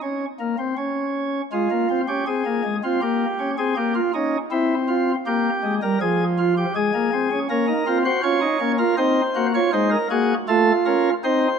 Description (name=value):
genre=classical, baroque-style 4-part fugue for pipe organ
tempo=80 BPM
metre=4/4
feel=straight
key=unclear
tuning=A4 = 440 Hz
part: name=pipe organ, sparkling flutes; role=solo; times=0.0-11.6 s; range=F3 to Db5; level=-19 LUFS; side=equal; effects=none
room=moderate concert hall reverb, RT60 2.3 s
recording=none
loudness=-19 LUFS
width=side -6 dB against mid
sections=0.0-11.6 A section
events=none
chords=0.0 N.C.; 1.5 Fm/Ab; 3.0 Gdim/Bb; 4.5 C7; 6.0 Fm; 7.5 Bbm; 9.0 Cdim; 10.5 F7/A